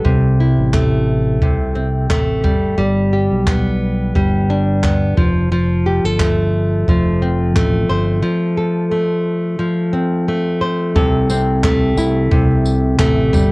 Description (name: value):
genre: acoustic pop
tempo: 88 BPM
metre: 4/4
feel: swing 55% on 16ths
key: unclear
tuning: A4 = 439 Hz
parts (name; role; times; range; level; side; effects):
- flamenco guitar; accompaniment; 0.0-13.5 s; C3 to C5; -15 LUFS; equal; cassette tape
- fingered electric bass; bass; 0.0-13.5 s; F1 to C2; -18 LUFS; equal; none
- jazz brush drum kit; drums; 0.1-13.5 s; handclaps, kick drum, tambourine; -18 LUFS; equal; cassette tape
room: light reverb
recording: home recording on cassette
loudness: -13 LUFS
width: side -25 dB against mid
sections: 0.0-11.0 A section; 11.0-13.5 B section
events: break 8.2-11.0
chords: 0.1 C6; 2.4 G; 5.2 F; 11.0 C6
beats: | 0.05 0.74 1.42 2.11 | 2.79 3.47 4.16 4.84 | 5.52 6.20 6.88 7.57 | 8.25 8.93 9.61 10.29 | 10.96 11.64 12.32 13.00